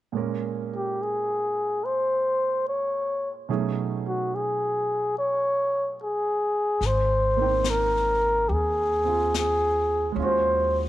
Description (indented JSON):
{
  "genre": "jazz ballad",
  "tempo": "72 BPM",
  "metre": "4/4",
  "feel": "swing 68% on 8ths",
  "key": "Ab major",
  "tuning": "A4 = 440 Hz",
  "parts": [
    { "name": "warm baby grand piano", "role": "accompaniment", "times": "0.1-10.9 s", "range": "Bb2 to G5", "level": "-31 LUFS", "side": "right 8 dB", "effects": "none" },
    { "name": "trumpet with bucket mute", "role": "melody", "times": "0.8-10.8 s", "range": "F#4 to C#5", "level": "-23 LUFS", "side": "left 1 dB", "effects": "none" },
    { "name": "upright bass", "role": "bass", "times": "6.8-10.9 s", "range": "Ab1 to Eb2", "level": "-29 LUFS", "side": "equal", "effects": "none" },
    { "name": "jazz brush drum kit", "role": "drums", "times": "6.8-10.9 s", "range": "brushed snare drum, hi-hat, snare drum", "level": "-35 LUFS", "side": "left 10 dB", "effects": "none" }
  ],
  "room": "light reverb, small room ambience",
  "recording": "1960s-style stereo with parts hard left and right",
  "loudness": "-22 LUFS",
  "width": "side -14 dB against mid",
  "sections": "0.1-6.8 A section; 6.8-10.9 B section",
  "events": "none",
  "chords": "0.1 Bbm9; 3.5 B13; 6.8 Abmaj7; 10.2 Ebm11"
}